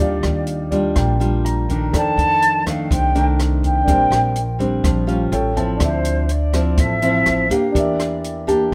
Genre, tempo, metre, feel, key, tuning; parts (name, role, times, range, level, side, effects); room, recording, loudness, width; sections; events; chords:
bossa nova; 124 BPM; 4/4; straight; A4 = 441 Hz
mellow concert flute; melody; 0.0-8.4 s; C5 to A5; -22 LUFS; equal
nylon-string guitar; accompaniment; 0.0-8.7 s; F2 to G4; -23 LUFS; equal
warm concert grand piano; accompaniment; 0.0-8.7 s; D4 to Bb5; -28 LUFS; equal
upright bass; bass; 0.0-8.7 s; A1 to F2; -24 LUFS; equal
compact cocktail drum kit; drums; 0.2-8.6 s; hi-hat, kick drum, rim click; -24 LUFS; equal
light reverb; -18 LUFS; mono
0.0-5.8 A section; 5.8-8.7 B section
grand piano fill 0.5-1.9, 4.8-5.8, 8.2-8.7
0.0 Ebmaj9; 1.9 F13; 3.9 Bb69; 5.3 A7alt; 5.8 Dm9; 7.8 Em7b5